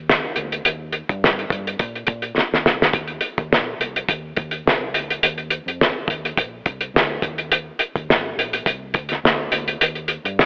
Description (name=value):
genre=indie pop, bedroom pop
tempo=105 BPM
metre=4/4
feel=swing 55% on 16ths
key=Eb major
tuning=A4 = 441 Hz
part: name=vintage muted fingered electric bass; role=bass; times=0.0-10.5 s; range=G1 to Bb2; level=-34 LUFS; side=equal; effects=transformer saturation
part: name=cloth-damped thuddy drum kit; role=drums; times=0.1-10.5 s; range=hi-hat, kick drum, snare drum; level=-19 LUFS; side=equal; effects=cassette tape
room=moderate lush hall reverb, RT60 2.1 s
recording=home recording on cassette, telephone sound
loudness=-18 LUFS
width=side -32 dB against mid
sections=0.0-2.9 A section; 2.9-10.5 B section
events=drum fill 2.4-2.9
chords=none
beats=0.07 | 0.65 1.22 1.79 2.36 | 2.93 3.51 4.08 4.65 | 5.22 5.79 6.37 6.94 | 7.51 8.09 8.66 9.23 | 9.80 10.38